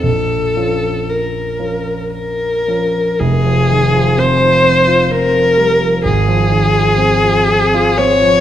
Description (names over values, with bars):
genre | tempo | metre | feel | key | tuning
classical, romantic duo for viola and grand piano | 55-66 BPM | 3/4 | rubato | Bb minor, F minor from 3.2 s | A4 = 441 Hz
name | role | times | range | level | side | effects
rich viola | melody | 0.0-8.4 s | Ab4 to Db5 | -13 LUFS | left 2 dB | none
dark concert grand piano | accompaniment | 0.0-8.4 s | F1 to F4 | -15 LUFS | right 2 dB | none
room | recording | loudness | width
wet recital hall reverb, RT60 1.7 s | minimal, uncompressed stereo recording | -11 LUFS | side -11 dB against mid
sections
0.0-3.2 A section; 3.2-8.4 B section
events
none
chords
0.1 Bbm; 3.2 Fm; 6.0 Fm/Ab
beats
| 0.05 1.09 2.13 | 3.20 4.17 5.10 | 6.02 6.95 7.97